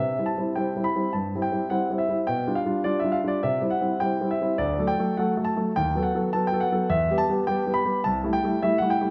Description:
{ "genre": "classical-period piano sonatina", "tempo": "104 BPM", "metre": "4/4", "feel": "straight", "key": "unclear", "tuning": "A4 = 441 Hz", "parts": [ { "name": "clear concert grand piano", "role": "solo", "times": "0.0-9.1 s", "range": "C2 to B5", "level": "-25 LUFS", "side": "equal", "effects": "none" } ], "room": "moderate recital hall reverb, RT60 1.6 s", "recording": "none", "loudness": "-25 LUFS", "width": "mono", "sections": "0.0-9.1 A section", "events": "none", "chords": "0.0 C; 2.3 G7/B; 3.5 C; 4.6 D; 5.8 B7/D#; 6.9 Em; 8.0 Am7/C", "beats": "0.57 1.15 1.73 | 2.30 2.88 3.45 4.03 | 4.61 5.18 5.76 6.33 | 6.90 7.47 8.04 8.62" }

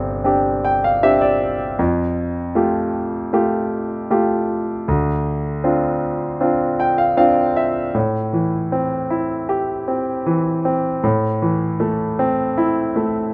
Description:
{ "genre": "pop", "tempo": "78 BPM", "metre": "4/4", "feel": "straight", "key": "unclear", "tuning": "A4 = 439 Hz", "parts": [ { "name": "clear concert grand piano", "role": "solo", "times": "0.0-13.3 s", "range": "G1 to G5", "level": "-19 LUFS", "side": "equal", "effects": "none" } ], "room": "studio reverb", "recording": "rough home demo mix", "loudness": "-19 LUFS", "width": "mono", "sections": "0.0-8.0 A section; 8.0-13.3 B section", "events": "grand piano fill 0.3-1.8, 6.4-8.0, 13.0-13.3", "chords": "0.0 Csus2; 1.8 Fadd9; 4.9 Dm7; 8.0 Am7; 11.0 Am", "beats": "0.26 1.03 | 1.80 2.57 3.33 4.10 | 4.87 5.64 6.41 7.18 | 7.95 8.72 9.49 10.26 | 11.03 11.80 12.57 13.34" }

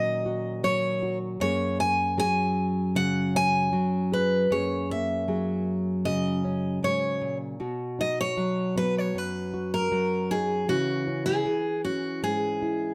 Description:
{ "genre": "folk", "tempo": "78 BPM", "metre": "4/4", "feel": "straight", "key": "B major", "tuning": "A4 = 440 Hz", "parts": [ { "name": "picked steel-string acoustic guitar", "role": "melody", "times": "0.0-12.9 s", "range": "F#4 to G#5", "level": "-29 LUFS", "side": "equal", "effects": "plate reverb" }, { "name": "nylon-string guitar", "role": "accompaniment", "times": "0.0-12.9 s", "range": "F#2 to G#4", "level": "-30 LUFS", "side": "equal", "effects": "none" } ], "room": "moderate studio reverb, RT60 0.5 s", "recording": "close, detailed microphones", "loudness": "-27 LUFS", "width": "mono", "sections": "0.0-7.6 A section; 7.6-12.9 B section", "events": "steel-string acoustic guitar solo 7.6-12.9", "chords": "0.0 D#m7; 1.4 F#add9; 7.6 B; 10.7 C#m", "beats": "0.63 | 1.40 2.18 2.96 3.73 | 4.50 5.28 6.05 6.82 | 7.60 8.37 9.14 9.91 | 10.69 11.46 12.23" }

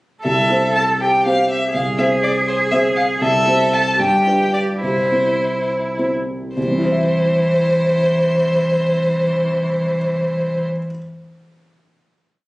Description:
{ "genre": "quick classical-period movement for piano trio", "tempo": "66-82 BPM (dotted quarters)", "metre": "6/8", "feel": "rubato", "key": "C major", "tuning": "A4 = 440 Hz", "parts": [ { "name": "rich violin", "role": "melody", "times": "0.2-10.6 s", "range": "C5 to A5", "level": "-18 LUFS", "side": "equal", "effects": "none" }, { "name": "rich cello", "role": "second line", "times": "0.2-10.6 s", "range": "E3 to A4", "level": "-20 LUFS", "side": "right 1 dB", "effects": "none" }, { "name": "dark concert grand piano", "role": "accompaniment", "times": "0.2-11.0 s", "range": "C2 to E5", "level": "-21 LUFS", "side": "equal", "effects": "none" } ], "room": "moderate large studio reverb, RT60 1.1 s", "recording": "recorded on a phone in the room, club reverb, compression", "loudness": "-15 LUFS", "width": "side -20 dB against mid", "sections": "0.2-6.6 theme; 6.6-10.0 final chord", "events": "slowing down 2.5-6.6", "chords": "0.2 C; 1.7 C(#5, no3); 3.2 C; 4.0 G7; 4.8 C", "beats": "| 0.24 1.01 | 1.74 2.48 | 3.21 3.99 | 4.82 5.68 | 6.56 7.41 | 8.25 9.10" }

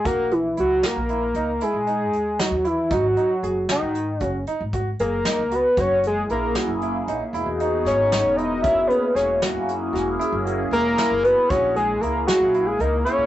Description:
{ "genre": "progressive instrumental, band music in an uneven meter", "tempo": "230 BPM (eighths)", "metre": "11/8", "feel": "straight", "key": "unclear", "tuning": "A4 = 442 Hz", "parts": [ { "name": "fat analog lead", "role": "melody", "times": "0.0-13.3 s", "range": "D#4 to E5", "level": "-20 LUFS", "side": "equal", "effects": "none" }, { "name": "clear concert grand piano", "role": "arpeggios", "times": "0.0-13.2 s", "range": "C#4 to G#4", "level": "-29 LUFS", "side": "right 3 dB", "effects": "none" }, { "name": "upright bass", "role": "bass", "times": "0.1-13.3 s", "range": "E1 to A#2", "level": "-30 LUFS", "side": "equal", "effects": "none" }, { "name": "soft brush drum kit", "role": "drums", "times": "0.1-13.2 s", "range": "hi-hat, kick drum, snare drum", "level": "-28 LUFS", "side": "equal", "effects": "none" }, { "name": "phased analog pad", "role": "accompaniment", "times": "6.2-13.3 s", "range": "A#3 to A#4", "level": "-26 LUFS", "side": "left 1 dB", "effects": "phaser, chorus" } ], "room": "light reverb", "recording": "rough rehearsal-room recording, nothing above 8.0 kHz", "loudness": "-19 LUFS", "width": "side -13 dB against mid", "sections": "0.0-13.3 A section", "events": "none", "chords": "0.0 A#m7b5; 2.9 G#5; 5.8 F#9; 7.3 Emaj7; 8.6 F#9; 11.5 A#m7b5", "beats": "| 0.05 0.31 0.57 0.83 1.09 1.35 1.61 1.87 2.13 2.39 2.65 | 2.91 3.17 3.43 3.69 3.95 4.21 4.47 4.73 4.99 5.25 5.51 | 5.77 6.03 6.29 6.55 6.81 7.07 7.33 7.59 7.85 8.11 8.37 | 8.63 8.89 9.15 9.41 9.68 9.94 10.20 10.46 10.72 10.98 11.24 | 11.50 11.76 12.02 12.28 12.54 12.80 13.06" }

